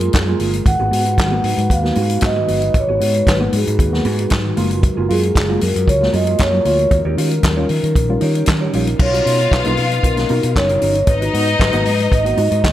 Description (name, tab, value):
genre	disco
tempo	115 BPM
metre	4/4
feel	straight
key	G# dorian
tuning	A4 = 442 Hz
part	vibraphone with soft mallets	melody	0.0-12.7 s	G#4 to F#5	-19 LUFS	equal	none
part	mellow electric guitar	accompaniment	0.0-12.7 s	A#3 to C#5	-26 LUFS	right 6 dB	none
part	glass harmonica	sustained chords	0.0-12.7 s	G3 to D#5	-25 LUFS	equal	none
part	fingered electric bass	bass	0.0-12.7 s	F#1 to D#3	-19 LUFS	equal	none
part	vintage drum kit	drums	0.0-12.7 s	crash cymbal, handclaps, hi-hat, kick drum, snare drum	-19 LUFS	equal	none
part	reed electric piano	accompaniment	0.7-12.7 s	G#2 to F#4	-26 LUFS	left 2 dB	fast tremolo
part	clear symphonic string section	second line	9.0-12.6 s	D#4 to E#5	-21 LUFS	left 2 dB	none
room	light reverb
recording	none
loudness	-14 LUFS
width	side -13 dB against mid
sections	0.0-9.0 A section; 9.0-12.7 B section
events	none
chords	0.0 F#maj9; 0.7 G#m7; 4.6 F#maj9; 6.9 D#7; 9.0 Bmaj7; 11.1 G#m7